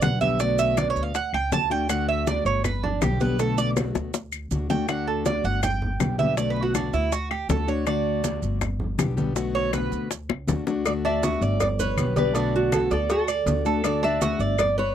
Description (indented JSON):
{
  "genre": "latin, Cuban son and guajira",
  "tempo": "161 BPM",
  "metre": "4/4",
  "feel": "straight",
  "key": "D major",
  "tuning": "A4 = 439 Hz",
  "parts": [
    { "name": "fingerpicked plugged-in steel-string acoustic guitar", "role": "accompaniment", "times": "0.0-14.6 s", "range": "B2 to G4", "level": "-28 LUFS", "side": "left 5 dB", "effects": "none" },
    { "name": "Cuban tres", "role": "arpeggios", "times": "0.0-14.9 s", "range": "D4 to A5", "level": "-26 LUFS", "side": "right 7 dB", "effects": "none" },
    { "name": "upright bass", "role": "bass", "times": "0.0-14.9 s", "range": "G1 to D2", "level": "-28 LUFS", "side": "equal", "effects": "none" },
    { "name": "bongos and cowbell", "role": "percussion", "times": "0.0-14.8 s", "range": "none", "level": "-29 LUFS", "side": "left 7 dB", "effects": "none" },
    { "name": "claves", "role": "percussion", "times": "0.0-14.8 s", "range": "none", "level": "-33 LUFS", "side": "left 25 dB", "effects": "none" },
    { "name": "congas", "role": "percussion", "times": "0.0-14.9 s", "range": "none", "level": "-30 LUFS", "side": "equal", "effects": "none" },
    { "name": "maracas", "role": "percussion", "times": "0.0-14.8 s", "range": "none", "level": "-37 LUFS", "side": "right 28 dB", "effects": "none" },
    { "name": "nylon-string guitar", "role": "melody", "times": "10.9-14.9 s", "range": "F#4 to E5", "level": "-26 LUFS", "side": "left 1 dB", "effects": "none" }
  ],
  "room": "little or no reverb",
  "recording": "dry, close 1970s-style studio recording",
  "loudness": "-22 LUFS",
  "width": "side -10 dB against mid",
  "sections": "0.0-10.9 A section; 10.9-14.9 B section",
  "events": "Cuban tres solo 0.0-10.9; drum fill 4.0-4.9, 10.3-10.9",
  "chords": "0.4 Bm7; 1.1 D; 2.6 G; 3.4 Bm7; 4.1 D; 5.6 G; 6.4 Bm7; 7.1 D; 8.6 G; 9.4 Bm7; 10.1 D; 11.6 G; 12.3 Bm7; 13.1 D",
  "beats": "0.02 | 0.40 0.77 1.15 1.52 | 1.90 2.27 2.64 3.02 | 3.39 3.76 4.14 4.51 | 4.88 5.26 5.63 6.00 | 6.38 6.75 7.12 7.50 | 7.87 8.24 8.62 8.99 | 9.36 9.73 10.11 10.48 | 10.85 11.23 11.60 11.97 | 12.35 12.72 13.09 13.47 | 13.84 14.21 14.59"
}